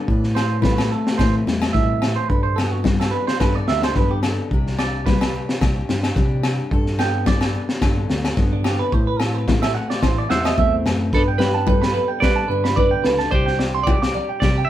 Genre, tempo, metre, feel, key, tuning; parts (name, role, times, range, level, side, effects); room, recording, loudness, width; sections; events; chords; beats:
highlife guitar band; 109 BPM; 4/4; swing 55% on 16ths; G major; A4 = 440 Hz
picked steel-string acoustic guitar; accompaniment; 0.0-14.7 s; G2 to B4; -27 LUFS; left 4 dB
clean electric guitar; arpeggios; 0.0-14.7 s; D4 to D6; -23 LUFS; right 5 dB
tine electric piano; bass; 0.1-14.6 s; C2 to G3; -23 LUFS; equal
crunchy breakbeat drum kit; drums; 0.1-14.6 s; kick drum, snare drum; -21 LUFS; equal
congas; percussion; 0.1-14.6 s; -26 LUFS; left 4 dB
agogo bells; percussion; 0.4-11.0 s; -32 LUFS; left 4 dB
semi-hollow electric guitar; melody; 10.3-14.7 s; D4 to E5; -24 LUFS; right 2 dB; phaser
moderate studio ambience, RT60 0.5 s; band playing live in one room; -17 LUFS; side -12 dB against mid
0.0-11.1 A section; 11.1-14.7 B section
clean electric guitar solo 0.0-11.1
0.1 Amadd9; 2.3 Gadd9; 4.5 Csus2; 6.7 Gadd9; 8.9 Amadd9; 11.1 Gadd9; 13.3 Csus2
| 0.09 0.64 1.19 1.74 | 2.30 2.85 3.40 3.96 | 4.51 5.06 5.62 6.17 | 6.72 7.27 7.82 8.38 | 8.93 9.48 10.03 10.58 | 11.13 11.68 12.23 12.78 | 13.32 13.87 14.42